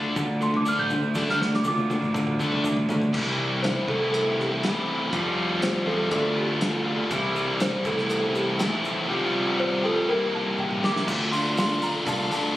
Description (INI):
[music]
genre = indie rock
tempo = 121 BPM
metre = 4/4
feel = straight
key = D minor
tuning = A4 = 439 Hz
[part]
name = small celesta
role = melody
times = 0.0-12.6 s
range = G4 to A6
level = -29 LUFS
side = equal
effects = tape echo
[part]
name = biting overdriven guitar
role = riff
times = 0.0-12.6 s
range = C3 to G4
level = -25 LUFS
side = left 2 dB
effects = none
[part]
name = overdriven electric guitar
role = riff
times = 0.0-11.1 s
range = C3 to Bb4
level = -31 LUFS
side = right 6 dB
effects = analog chorus, tape echo
[part]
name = picked electric bass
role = bass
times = 0.2-12.3 s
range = C2 to D3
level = -30 LUFS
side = equal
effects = none
[part]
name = cloth-damped thuddy drum kit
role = drums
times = 0.2-12.4 s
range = crash cymbal, hi-hat, kick drum, snare drum, toms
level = -30 LUFS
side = equal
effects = none
[part]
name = egg shaker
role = percussion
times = 0.2-3.1, 7.1-12.5 s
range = none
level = -48 LUFS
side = right 3 dB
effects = none
[sound]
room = moderate studio reverb, RT60 0.7 s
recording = recorded on a phone in the room, studio reverb, compression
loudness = -22 LUFS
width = side -15 dB against mid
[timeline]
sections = 0.0-3.1 A section; 3.1-11.1 B section; 11.1-12.6 C section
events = celesta solo 0.0-3.1; drum fill 1.2-3.1, 10.6-11.1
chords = 0.0 Dm; 3.1 C; 3.9 Am7/C; 5.1 Fsus2; 6.1 Dm; 7.1 C; 7.9 Am7/C; 9.1 Fsus2; 10.1 C7; 11.1 Dm